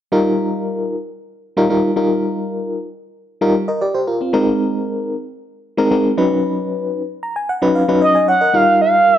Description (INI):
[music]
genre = funk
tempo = 114 BPM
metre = 4/4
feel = straight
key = unclear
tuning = A4 = 438 Hz
[part]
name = FM electric piano with tremolo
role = accompaniment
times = 0.1-9.2 s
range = Gb3 to Bb5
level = -16 LUFS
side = left 1 dB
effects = tube saturation
[part]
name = expressive synth lead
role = melody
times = 8.0-9.2 s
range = Eb5 to Gb5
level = -11 LUFS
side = right 2 dB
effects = chorus
[sound]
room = moderate recital hall reverb, RT60 1.4 s, digital ambience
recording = none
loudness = -15 LUFS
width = side -11 dB against mid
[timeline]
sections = 0.1-8.5 A section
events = FM electric piano fill 7.0-8.5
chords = 0.1 F9sus4; 4.3 Bb9sus4; 6.2 Db9sus4; 8.5 F9sus4